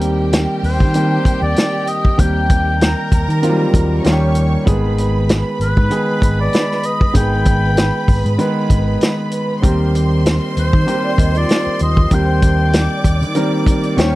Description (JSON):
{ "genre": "lush 1970s-style soul", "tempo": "97 BPM", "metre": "4/4", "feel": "swing 54% on 16ths", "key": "Eb major", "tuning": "A4 = 440 Hz", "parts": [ { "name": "warm symphonic violin section", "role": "second line", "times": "0.0-14.2 s", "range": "G4 to D6", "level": "-24 LUFS", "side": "right 2 dB", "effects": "none" }, { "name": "clear concert grand piano", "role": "accompaniment", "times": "0.0-14.2 s", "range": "Eb3 to Cb5", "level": "-19 LUFS", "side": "equal", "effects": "none" }, { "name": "fingered electric bass", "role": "bass", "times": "0.0-14.2 s", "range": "Ab1 to Eb3", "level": "-17 LUFS", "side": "equal", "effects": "none" }, { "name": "vintage drum kit", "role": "drums", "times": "0.0-14.1 s", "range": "hi-hat, kick drum, snare drum", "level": "-15 LUFS", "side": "equal", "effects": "none" }, { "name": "warm oboe", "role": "melody", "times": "0.6-13.4 s", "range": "Cb5 to G5", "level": "-21 LUFS", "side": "left 1 dB", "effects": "none" }, { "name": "mellow electric guitar", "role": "riff", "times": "10.9-14.1 s", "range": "F4 to Eb5", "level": "-25 LUFS", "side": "right 2 dB", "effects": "ensemble chorus" } ], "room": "little or no reverb", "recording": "dry, close 1970s-style studio recording", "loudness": "-13 LUFS", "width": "side -18 dB against mid", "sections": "0.0-14.2 A section", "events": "none", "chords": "0.0 Eb6; 4.0 Eb7; 4.7 Abm; 9.6 Eb6" }